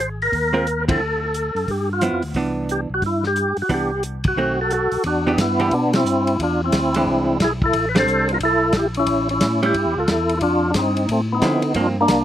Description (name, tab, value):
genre	soul jazz organ trio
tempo	179 BPM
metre	4/4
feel	swing 65% on 8ths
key	unclear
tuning	A4 = 445 Hz
part	percussive tonewheel organ	melody	0.0-12.2 s	A3 to C5	-19 LUFS	equal	slow rotary speaker, overdrive, chorus vibrato
part	tonewheel organ	bass	0.0-12.2 s	Ab1 to D3	-25 LUFS	equal	overdrive, chorus vibrato, slow rotary speaker
part	warm soul drum kit	drums	0.2-12.2 s	hi-hat, kick drum, ride cymbal, snare drum	-26 LUFS	equal	none
part	hollow-body jazz guitar	accompaniment	0.5-12.0 s	D3 to Bb4	-23 LUFS	right 3 dB	slapback echo
room	little or no reverb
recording	recorded outdoors, with no room sound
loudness	-17 LUFS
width	side -11 dB against mid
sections	0.0-5.0 A section; 5.0-12.2 B section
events	band accent 0.8, 4.2, 5.9, 7.9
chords	0.0 Ab69; 1.0 D5; 1.7 G6; 2.4 Cmaj9; 4.4 B7b9; 5.0 Em7; 6.4 E7; 7.7 Am11; 9.1 A7; 10.4 Dm9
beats	0.32 0.66 | 1.00 1.34 1.67 2.01 | 2.35 2.69 3.02 3.36 | 3.70 4.04 4.37 4.71 | 5.05 5.38 5.72 6.06 | 6.39 6.73 7.06 7.40 | 7.73 8.07 8.40 8.74 | 9.07 9.41 9.74 10.08 | 10.41 10.75 11.08 11.42 | 11.75 12.09